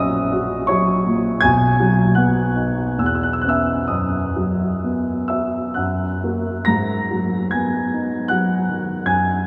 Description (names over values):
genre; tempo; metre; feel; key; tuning
classical, romantic nocturne for solo piano; 63-82 BPM; 3/4; rubato; B major; A4 = 440 Hz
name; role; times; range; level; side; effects
dark concert grand piano; solo; 0.0-9.5 s; A#1 to A#6; -20 LUFS; equal; none
room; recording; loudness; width
wet cathedral reverb, RT60 5.7 s; small room ambience; -20 LUFS; mono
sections
0.0-9.5 A section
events
none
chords
0.0 F#7/A#; 1.4 B; 3.0 E5; 3.9 B/F#; 5.8 F#; 6.7 G#m7